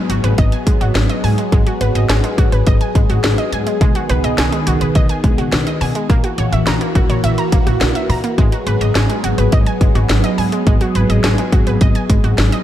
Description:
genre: synth-pop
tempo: 105 BPM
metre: 4/4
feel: straight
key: G# minor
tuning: A4 = 441 Hz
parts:
  - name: phased analog pad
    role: sustained chords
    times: 0.0-12.6 s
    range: D#3 to G#4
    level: -20 LUFS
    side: left 1 dB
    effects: phaser, chorus
  - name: wide unison pluck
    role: arpeggios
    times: 0.0-12.6 s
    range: G#3 to A#5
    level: -22 LUFS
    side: right 3 dB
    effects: tape echo
  - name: upright bass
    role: bass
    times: 0.1-12.5 s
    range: G#1 to B2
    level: -17 LUFS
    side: equal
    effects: none
  - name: house drum kit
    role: drums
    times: 0.1-12.6 s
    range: hi-hat, kick drum, snare drum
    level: -16 LUFS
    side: equal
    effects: gated reverb
room: digital ambience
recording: none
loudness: -12 LUFS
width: side -12 dB against mid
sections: 0.0-12.6 A section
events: none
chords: 0.0 G#m7; 3.8 B6; 6.1 F#7/A#; 8.4 G#m7

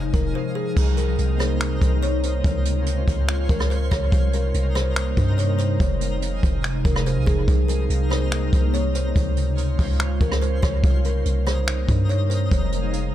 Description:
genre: hip hop, atmospheric cloud-rap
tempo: 143 BPM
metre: 4/4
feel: half-time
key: unclear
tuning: A4 = 440 Hz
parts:
  - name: glassy FM pad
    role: sustained chords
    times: 0.0-13.1 s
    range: C3 to C5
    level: -28 LUFS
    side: left 1 dB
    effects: ensemble chorus, built-in reverb, phaser, sidechain pumping
  - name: soft 808-style bass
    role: bass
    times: 0.0-13.1 s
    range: F1 to G2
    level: -22 LUFS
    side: equal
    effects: none
  - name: twinkling granular texture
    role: texture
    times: 0.0-13.1 s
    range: C4 to F5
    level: -35 LUFS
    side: equal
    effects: built-in reverb
  - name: kalimba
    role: melody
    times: 0.1-12.5 s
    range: Ab4 to Db5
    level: -29 LUFS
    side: equal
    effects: dub echo
  - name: jazz brush drum kit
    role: drums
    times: 0.1-13.0 s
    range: crash cymbal, finger snaps, hi-hat, kick drum, rim click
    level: -23 LUFS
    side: equal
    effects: vintage 12-bit sampler grit
room: little or no reverb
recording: echo-heavy mix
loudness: -19 LUFS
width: side -12 dB against mid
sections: 0.8-13.1 A section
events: drums muted 0.3-0.8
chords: 0.0 Fm7; 0.8 Cm7; 2.4 Dbmaj7; 4.1 Cm7; 5.8 Fm7; 7.5 Cm7; 9.2 Dbmaj7; 10.8 Cm7; 12.5 Fm7

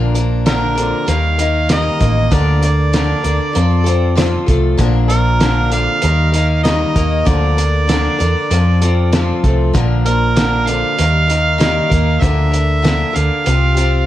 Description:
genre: folk rock and heartland rock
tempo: 97 BPM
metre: 4/4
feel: straight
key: unclear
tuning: A4 = 440 Hz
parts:
  - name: picked acoustic archtop guitar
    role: accompaniment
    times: 0.0-14.1 s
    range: Bb2 to Bb4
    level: -21 LUFS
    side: left 5 dB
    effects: none
  - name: electric guitar through a small old amp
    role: riff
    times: 0.0-14.1 s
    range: F2 to Eb4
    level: -22 LUFS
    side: right 1 dB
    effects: none
  - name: hollow-body short-scale fingered electric bass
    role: bass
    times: 0.0-14.1 s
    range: A1 to F2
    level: -15 LUFS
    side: equal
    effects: none
  - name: cloth-damped thuddy drum kit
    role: drums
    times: 0.2-13.9 s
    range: hi-hat, kick drum, snare drum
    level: -18 LUFS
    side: right 1 dB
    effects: none
  - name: warm harmonica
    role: melody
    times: 0.5-14.1 s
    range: Bb4 to F5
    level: -19 LUFS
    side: right 2 dB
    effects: none
room: light reverb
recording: dark, warm production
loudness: -12 LUFS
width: side -13 dB against mid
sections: 0.0-14.1 A section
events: none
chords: 0.0 Bb; 1.1 Eb; 2.3 Bb/D; 3.6 F; 4.8 Bb; 6.0 Eb; 7.3 Bb/D; 8.5 F; 9.8 Bb; 11.0 Eb; 12.2 Bb/D; 13.5 Csus4

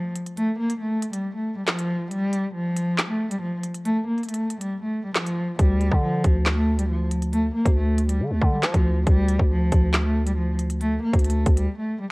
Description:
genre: hip hop, drill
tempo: 138 BPM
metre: 4/4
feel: half-time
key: D minor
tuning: A4 = 441 Hz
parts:
  - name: dark cello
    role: melody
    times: 0.0-12.1 s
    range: F3 to Bb3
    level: -24 LUFS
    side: equal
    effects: none
  - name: drill drum kit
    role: drums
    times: 0.2-11.7 s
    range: handclaps, hi-hat, kick drum, snare drum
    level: -22 LUFS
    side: equal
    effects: none
  - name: growling 808-style bass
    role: bass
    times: 5.6-11.7 s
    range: D2 to F3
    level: -22 LUFS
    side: equal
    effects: none
room: little or no reverb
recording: worn, warbling old tape, cassette tape, warbly pitch drift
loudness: -20 LUFS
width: side -26 dB against mid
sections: 0.0-12.1 A section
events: break 0.0-5.6, 11.7-12.1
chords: 0.0 N.C.; 5.6 Dm

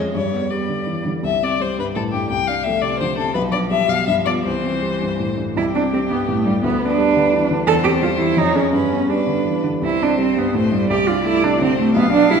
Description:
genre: quick classical-period movement for piano trio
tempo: 159-176 BPM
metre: 3/4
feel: rubato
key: C major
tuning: A4 = 443 Hz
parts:
  - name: warm violin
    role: melody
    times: 0.0-12.4 s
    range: G4 to G5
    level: -23 LUFS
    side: left 6 dB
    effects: none
  - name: rich cello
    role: second line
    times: 0.0-12.4 s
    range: E3 to A4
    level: -19 LUFS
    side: right 4 dB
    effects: none
  - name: warm baby grand piano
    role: accompaniment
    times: 0.0-12.4 s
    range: B1 to Ab4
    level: -21 LUFS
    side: left 2 dB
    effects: none
room: wet scoring stage reverb, RT60 1.8 s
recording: recorded in a church or concert hall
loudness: -16 LUFS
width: side -6 dB against mid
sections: 0.0-5.6 A section; 5.6-12.4 A section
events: none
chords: 0.1 G; 1.2 C5; 2.3 Dm7/C; 3.4 G7/B; 4.1 G7; 4.5 C; 6.6 G/D; 7.7 C/E; 8.4 Db/F; 8.7 G; 9.8 C5; 10.9 D5/C

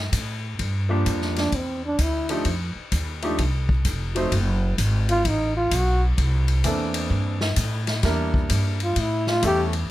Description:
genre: jazz, big band swing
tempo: 129 BPM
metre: 4/4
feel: swing 66% on 8ths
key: C mixolydian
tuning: A4 = 439 Hz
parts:
  - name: upright bass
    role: bass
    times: 0.0-9.9 s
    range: F1 to A2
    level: -23 LUFS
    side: equal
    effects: none
  - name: swinging big-band drum kit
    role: drums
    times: 0.1-9.8 s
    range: hi-hat, kick drum, ride cymbal, snare drum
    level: -28 LUFS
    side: left 2 dB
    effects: none
  - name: clear baby grand piano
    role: accompaniment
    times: 0.9-9.7 s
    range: E3 to C5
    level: -26 LUFS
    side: right 1 dB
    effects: none
  - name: mellow trombone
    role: melody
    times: 1.4-2.3, 5.1-6.0, 8.8-9.6 s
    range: C4 to G4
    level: -24 LUFS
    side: equal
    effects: none
room: little or no reverb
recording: close, detailed microphones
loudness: -20 LUFS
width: side -15 dB against mid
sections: 0.0-9.9 A section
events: trombone solo 0.0-9.9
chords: 0.0 C5 (rootless); 0.6 Gm7; 1.5 Dm11; 2.5 F7; 4.3 F#madd9; 6.2 C13; 8.0 Em7b5; 9.0 A7

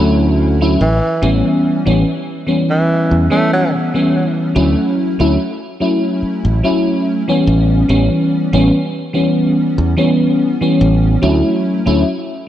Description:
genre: vaporwave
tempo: 72 BPM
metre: 4/4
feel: swing 54% on 16ths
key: D major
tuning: A4 = 440 Hz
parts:
  - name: FM electric piano with soft pad layer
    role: accompaniment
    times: 0.0-12.0 s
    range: E3 to E4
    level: -14 LUFS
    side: equal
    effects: analog chorus, cassette tape, analog delay
  - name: modern bright fingered electric bass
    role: bass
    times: 0.0-12.0 s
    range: A1 to E2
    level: -14 LUFS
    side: equal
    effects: none
  - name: breathy tenor saxophone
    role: melody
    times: 0.8-3.7 s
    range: E3 to A3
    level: -20 LUFS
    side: right 1 dB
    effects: tape echo
room: light reverb, small room ambience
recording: cassette tape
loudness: -12 LUFS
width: side -12 dB against mid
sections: 0.0-4.6 A section; 4.6-12.5 B section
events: break 3.7-4.6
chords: 0.0 Dmaj7; 0.8 A9; 4.6 Dmaj7 (rootless); 7.5 A9; 11.2 Dmaj7

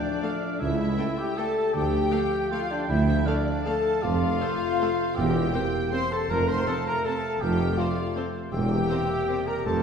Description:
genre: classical, orchestral ballroom waltz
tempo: 159 BPM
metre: 3/4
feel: uneven beats, rubato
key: D minor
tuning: A4 = 440 Hz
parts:
  - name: mellow hollow silver concert flute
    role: second line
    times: 0.0-9.8 s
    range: D5 to C6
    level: -36 LUFS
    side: left 2 dB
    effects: none
  - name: rich studio violin section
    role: second line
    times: 0.0-9.8 s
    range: D5 to C6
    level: -38 LUFS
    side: equal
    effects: none
  - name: warm clarinet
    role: second line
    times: 0.0-9.8 s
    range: D4 to C5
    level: -36 LUFS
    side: left 4 dB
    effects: none
  - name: warm oboe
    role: second line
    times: 0.0-9.8 s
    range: C5 to G5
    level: -37 LUFS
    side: right 2 dB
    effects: none
  - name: dark trombone section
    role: sustained chords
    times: 0.0-9.8 s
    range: C3 to Bb3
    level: -36 LUFS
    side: equal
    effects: none
  - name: mellow French horn section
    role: sustained chords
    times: 0.0-9.8 s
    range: D4 to C5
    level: -30 LUFS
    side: left 3 dB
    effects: none
  - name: dark trumpet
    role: stabs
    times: 0.0-9.8 s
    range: D4 to C5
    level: -32 LUFS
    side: left 1 dB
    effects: none
  - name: rich studio violin section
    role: melody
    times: 0.2-9.4 s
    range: C5 to G5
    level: -42 LUFS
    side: left 5 dB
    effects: none
  - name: rich studio viola section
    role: accompaniment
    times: 0.2-9.4 s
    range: A3 to Bb4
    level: -36 LUFS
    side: equal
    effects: none
  - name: mellow tuba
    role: bass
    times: 0.6-9.8 s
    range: E1 to D2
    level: -32 LUFS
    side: right 1 dB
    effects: none
  - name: rich studio cello section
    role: bass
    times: 0.6-9.8 s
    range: C#2 to F2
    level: -32 LUFS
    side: right 2 dB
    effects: none
  - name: warm studio double bass section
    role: bass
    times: 0.6-9.8 s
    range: E1 to D2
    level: -31 LUFS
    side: right 2 dB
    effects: none
room: wet scoring stage reverb, RT60 1.8 s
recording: heard from further back in the room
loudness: -23 LUFS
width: side -6 dB against mid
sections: 0.0-9.8 A section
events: none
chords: 0.0 Dm; 0.6 A7/C#; 1.7 Dm; 4.0 F; 5.2 C7/E; 6.3 F; 8.5 C7/E

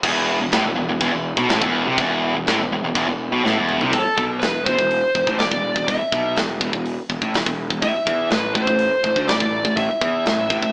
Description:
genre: heavy metal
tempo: 123 BPM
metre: 4/4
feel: straight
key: unclear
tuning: A4 = 438 Hz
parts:
  - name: distorted electric guitar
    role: riff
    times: 0.0-10.7 s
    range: E2 to E3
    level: -28 LUFS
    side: equal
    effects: distortion
  - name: heavy high-gain guitar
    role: riff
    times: 0.0-3.9 s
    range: E2 to C3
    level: -23 LUFS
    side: equal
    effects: distortion
  - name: fuzz picked electric bass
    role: bass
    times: 0.0-10.7 s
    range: E1 to E2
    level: -29 LUFS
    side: equal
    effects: overdrive
  - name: tight metal drum kit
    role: drums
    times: 0.0-10.7 s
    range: china cymbal, crash cymbal, hi-hat, kick drum, snare drum, toms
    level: -26 LUFS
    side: equal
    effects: none
  - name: high-gain lead guitar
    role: melody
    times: 3.9-10.7 s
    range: A4 to E5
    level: -23 LUFS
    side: equal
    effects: distortion
room: light reverb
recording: band playing live in one room, small speaker sound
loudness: -20 LUFS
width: mono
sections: 0.0-3.9 A section; 3.9-10.7 B section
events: drum fill 3.4-3.9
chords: 0.0 E5; 7.8 A5

